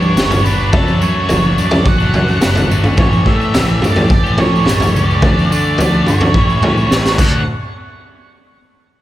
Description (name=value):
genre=indie rock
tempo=107 BPM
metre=4/4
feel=straight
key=D major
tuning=A4 = 440 Hz
part: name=octave-fuzz lead guitar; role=melody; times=0.0-7.4 s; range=A4 to F#5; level=-20 LUFS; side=right 2 dB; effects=distortion, diffuse ambient delay
part: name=overdriven electric guitar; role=riff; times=0.0-7.4 s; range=G2 to G4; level=-22 LUFS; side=left 8 dB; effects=none
part: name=overdriven semi-hollow guitar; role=riff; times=0.0-7.4 s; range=E3 to G4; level=-25 LUFS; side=right 6 dB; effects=wide subtle chorus, diffuse ambient delay
part: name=fuzz picked electric bass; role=bass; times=0.0-7.4 s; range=F#1 to D3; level=-18 LUFS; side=equal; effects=overdrive
part: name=tambourine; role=percussion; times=0.0-7.4 s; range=none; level=-32 LUFS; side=right 6 dB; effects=none
part: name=raw garage drum kit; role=drums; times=0.2-7.3 s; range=crash cymbal, kick drum, snare drum, toms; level=-13 LUFS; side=equal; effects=none
room=light reverb, small room ambience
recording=none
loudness=-10 LUFS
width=side -14 dB against mid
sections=0.0-7.5 A section; 7.5-9.0 B section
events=drum fill 6.9-7.5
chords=0.0 G; 0.7 Dmaj7/F#; 3.0 A7; 5.2 D; 6.3 A7; 7.2 D; 7.5 N.C.